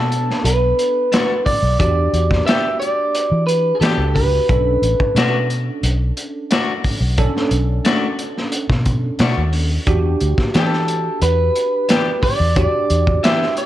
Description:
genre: straight-eighth soul blues.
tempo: 89 BPM.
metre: 4/4.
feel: straight.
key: B minor.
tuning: A4 = 441 Hz.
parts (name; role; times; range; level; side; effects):
electric guitar through a small old amp; melody; 0.0-5.5, 10.6-13.7 s; G#4 to E5; -18 LUFS; right 1 dB; none.
bell-like tine electric piano; accompaniment; 0.0-13.7 s; B3 to A4; -25 LUFS; right 3 dB; analog chorus.
vintage muted fingered electric bass; bass; 0.0-13.2 s; A1 to E3; -18 LUFS; equal; none.
crunchy breakbeat drum kit; drums; 0.1-13.7 s; hi-hat, kick drum, snare drum; -20 LUFS; equal; none.
clean electric guitar; stabs; 1.1-13.5 s; E3 to G4; -23 LUFS; left 5 dB; spring reverb.
room: studio reverb.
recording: none.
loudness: -15 LUFS.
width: side -13 dB against mid.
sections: 0.0-13.7 A section.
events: none.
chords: 0.0 Bm7; 1.8 Em7; 4.5 Bm7; 9.9 Em7.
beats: 0.46 1.13 | 1.80 2.48 3.15 3.82 | 4.50 5.17 5.84 6.51 | 7.19 7.86 8.53 9.21 | 9.88 10.55 11.22 11.89 | 12.57 13.24.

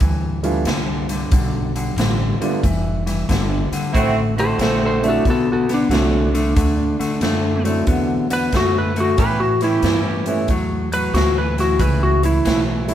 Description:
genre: electric blues shuffle.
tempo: 92 BPM.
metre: 4/4.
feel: swing 66% on 8ths.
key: D mixolydian.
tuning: A4 = 440 Hz.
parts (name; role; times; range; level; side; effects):
clean electric guitar; riff; 0.0-12.9 s; G2 to B3; -22 LUFS; left 2 dB; spring reverb.
upright bass; bass; 0.0-12.9 s; F1 to A2; -22 LUFS; equal; none.
swinging big-band drum kit; drums; 0.0-12.9 s; hi-hat, kick drum, snare drum; -23 LUFS; equal; none.
dark upright piano; accompaniment; 0.4-12.9 s; F#3 to F#4; -23 LUFS; right 4 dB; none.
mellow horn section; stabs; 3.9-5.1, 9.2-10.4 s; B3 to G4; -25 LUFS; right 4 dB; none.
electric slide guitar; melody; 4.4-12.6 s; D4 to C5; -20 LUFS; equal; none.
room: light reverb.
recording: band playing live in one room.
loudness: -16 LUFS.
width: side -11 dB against mid.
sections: 0.0-12.9 A section.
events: none.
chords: 0.0 G9; 3.9 D9; 9.2 A9.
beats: 0.01 0.67 | 1.32 1.98 2.63 3.29 | 3.94 4.60 5.25 5.91 | 6.56 7.22 7.88 8.53 | 9.19 9.84 10.50 11.15 | 11.81 12.46.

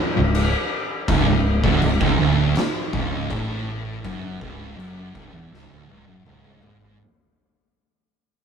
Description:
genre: stoner and doom metal.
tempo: 81 BPM.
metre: 4/4.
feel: straight.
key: unclear.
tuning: A4 = 440 Hz.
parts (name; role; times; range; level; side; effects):
thick fuzz guitar; riff; 0.2-7.0 s; C#2 to A2; -25 LUFS; left 1 dB; distortion.
growling fingered electric bass; bass; 0.2-7.0 s; C#1 to A1; -25 LUFS; equal; overdrive.
oversized low-tuned drum kit; drums; 0.3-7.0 s; crash cymbal, kick drum, snare drum, toms; -24 LUFS; equal; none.
thick fuzz guitar; riff; 1.1-7.0 s; C#2 to A2; -25 LUFS; right 6 dB; distortion.
room: moderate small room reverb, RT60 0.5 s.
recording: rough rehearsal-room recording, tube saturation.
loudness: -18 LUFS.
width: side -7 dB against mid.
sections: 0.0-7.0 A section.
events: fade-out 0.0-7.0; drum fill 5.5-7.0.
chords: 0.0 C#5.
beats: 0.35 | 1.09 1.83 2.57 3.31 | 4.05 4.79 5.53 6.26.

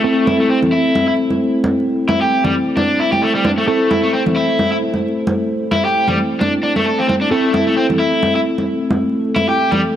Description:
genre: breakbeat, breaks.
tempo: 132 BPM.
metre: 4/4.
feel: swing 57% on 16ths.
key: A minor.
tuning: A4 = 441 Hz.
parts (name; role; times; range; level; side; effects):
dark analog pad; sustained chords; 0.0-10.0 s; A3 to C5; -21 LUFS; equal; chorus, phaser.
raw garage guitar; riff; 0.0-9.8 s; G3 to A4; -17 LUFS; left 1 dB; overdrive, vintage 12-bit sampler grit, low-pass filter, digital delay.
mellow tine electric piano; stabs; 0.0-10.0 s; C4 to A4; -19 LUFS; equal; medium stereo tremolo, vintage 12-bit sampler grit, low-pass filter, digital delay.
congas; percussion; 0.3-9.8 s; none; -21 LUFS; right 1 dB; none.
room: moderate lush hall reverb, RT60 2.6 s.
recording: vinyl crackle.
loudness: -14 LUFS.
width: side -10 dB against mid.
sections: 0.0-10.0 A section.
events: none.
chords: 0.0 Am.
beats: | 0.04 0.50 0.95 1.41 | 1.86 2.31 2.77 3.22 | 3.68 4.13 4.59 5.04 | 5.50 5.95 6.41 6.86 | 7.32 7.77 8.22 8.68 | 9.13 9.59.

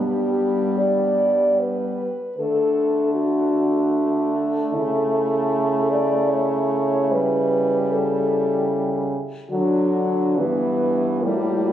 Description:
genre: classical, lyrical piece for horn quartet.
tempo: 76 BPM.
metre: 3/4.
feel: uneven beats, rubato.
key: D major.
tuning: A4 = 440 Hz.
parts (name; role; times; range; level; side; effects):
dark French horn; melody; 0.0-11.7 s; E4 to D5; -22 LUFS; left 2 dB; none.
mellow French horn; second line; 0.0-11.7 s; Bb3 to E4; -27 LUFS; right 4 dB; none.
clear French horn; accompaniment; 0.0-11.7 s; E3 to A3; -25 LUFS; left 2 dB; none.
mellow French horn; bass; 0.0-11.7 s; G2 to D3; -24 LUFS; right 2 dB; none.
room: light reverb.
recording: recorded on a phone in the room, club reverb.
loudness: -18 LUFS.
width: side -10 dB against mid.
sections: 0.0-11.7 A section.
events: none.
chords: 0.0 G; 2.4 D; 4.7 A/C#; 7.1 A7/C#; 9.5 D; 10.4 Em/G.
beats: 0.80 1.60 | 2.38 3.16 3.94 | 4.73 5.51 6.30 | 7.11 7.91 8.70 | 9.51 10.38 11.24.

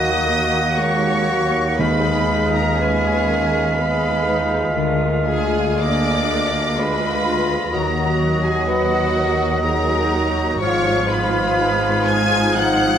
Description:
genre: classical, slow romantic movement for symphony orchestra.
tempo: 61 BPM.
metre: 3/4.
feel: uneven beats, rubato.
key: Eb minor.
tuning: A4 = 444 Hz.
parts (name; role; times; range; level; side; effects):
warm studio violin section; melody; 0.0-13.0 s; Gb5 to Ab6; -25 LUFS; left 2 dB; none.
rich studio violin section; second line; 0.0-13.0 s; Gb4 to Ab5; -26 LUFS; left 1 dB; none.
silver concert flute; second line; 0.0-13.0 s; Ab6 to Cb7; -26 LUFS; left 1 dB; none.
warm oboe; second line; 0.0-13.0 s; Eb5 to Gb5; -26 LUFS; right 1 dB; none.
clear bassoon; accompaniment; 0.0-13.0 s; F3 to Bb3; -25 LUFS; right 2 dB; none.
rich studio viola section; accompaniment; 0.0-13.0 s; F3 to Gb4; -24 LUFS; right 2 dB; none.
clear French horn section; sustained chords; 0.0-13.0 s; Eb4 to Cb5; -26 LUFS; left 4 dB; none.
concert harp; arpeggios; 0.0-13.0 s; Ab2 to Gb5; -28 LUFS; left 5 dB; none.
clear studio cello section; bass; 0.0-13.0 s; D2 to Ab2; -26 LUFS; right 1 dB; none.
clear studio double bass section; bass; 0.0-13.0 s; Ab1 to Eb2; -27 LUFS; right 3 dB; none.
timpani; percussion; 0.0-3.2 s; Eb3; -25 LUFS; right 1 dB; none.
room: moderate scoring stage reverb, RT60 1.8 s.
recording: none.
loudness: -16 LUFS.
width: side -9 dB against mid.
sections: 0.0-13.0 A section.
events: none.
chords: 0.0 Ebm; 1.8 Fm7b5/Eb; 4.7 Bb7/D; 7.7 Ebm; 10.6 Fdim/Ab.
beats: 0.79 | 1.80 2.80 3.78 | 4.74 5.82 6.80 | 7.73 8.67 9.64 | 10.62 11.59 12.57.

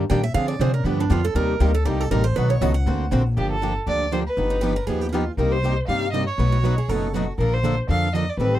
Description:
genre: acoustic string swing (jazz manouche).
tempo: 239 BPM.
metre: 4/4.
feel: swing 56% on 8ths.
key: G minor from 3.4 s.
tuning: A4 = 440 Hz.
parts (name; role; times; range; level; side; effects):
picked plugged-in steel-string acoustic guitar; accompaniment; 0.0-8.6 s; B2 to C5; -27 LUFS; right 8 dB; none.
picked swing-style acoustic guitar; accompaniment; 0.0-8.6 s; B2 to C5; -28 LUFS; left 6 dB; none.
upright bass; bass; 0.0-8.6 s; F#1 to D3; -22 LUFS; left 1 dB; none.
picked steel-string acoustic guitar; second line; 0.1-7.3 s; D4 to G5; -27 LUFS; right 7 dB; none.
rich violin; melody; 3.4-8.6 s; G4 to F5; -25 LUFS; equal; none.
room: little or no reverb.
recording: dark, warm production.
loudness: -19 LUFS.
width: side -13 dB against mid.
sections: 0.0-3.4 A section; 3.4-8.6 B section.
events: steel-string acoustic guitar solo 0.0-3.4.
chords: 0.4 Dm7b5; 0.9 G7; 1.4 Cm7; 2.4 B9; 2.9 Daug7; 3.4 Gm9; 4.4 Gaug7; 5.4 Cm7; 6.4 B9; 7.4 Bbmaj9.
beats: 0.10 | 0.35 0.60 0.85 1.10 | 1.36 1.61 1.86 2.11 | 2.36 2.61 2.86 3.11 | 3.37 3.62 3.87 4.12 | 4.37 4.62 4.88 5.13 | 5.38 5.63 5.88 6.13 | 6.38 6.63 6.88 7.14 | 7.39 7.64 7.89 8.14 | 8.39.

